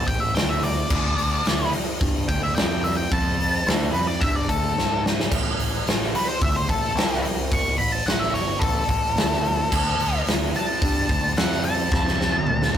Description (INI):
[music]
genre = blues rock power trio and southern rock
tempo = 109 BPM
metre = 4/4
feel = straight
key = unclear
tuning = A4 = 440 Hz
[part]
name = octave-fuzz lead guitar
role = melody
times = 0.0-12.8 s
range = A4 to C#6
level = -25 LUFS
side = left 1 dB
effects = distortion
[part]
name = growling fingered electric bass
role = bass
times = 0.0-12.8 s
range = G1 to G#2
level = -26 LUFS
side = right 1 dB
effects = overdrive
[part]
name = big rock drum kit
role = drums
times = 0.1-12.8 s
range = crash cymbal, hi-hat, kick drum, snare drum, toms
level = -22 LUFS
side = equal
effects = none
[sound]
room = light reverb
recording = rough rehearsal-room recording, warm saturation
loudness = -20 LUFS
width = side -9 dB against mid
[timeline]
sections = 0.0-12.8 A section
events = lead electric guitar solo 0.0-12.8; drum fill 4.8-5.3, 11.9-12.8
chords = 0.0 Gsus2; 0.9 D5; 5.3 Gsus2 (rootless); 9.7 D5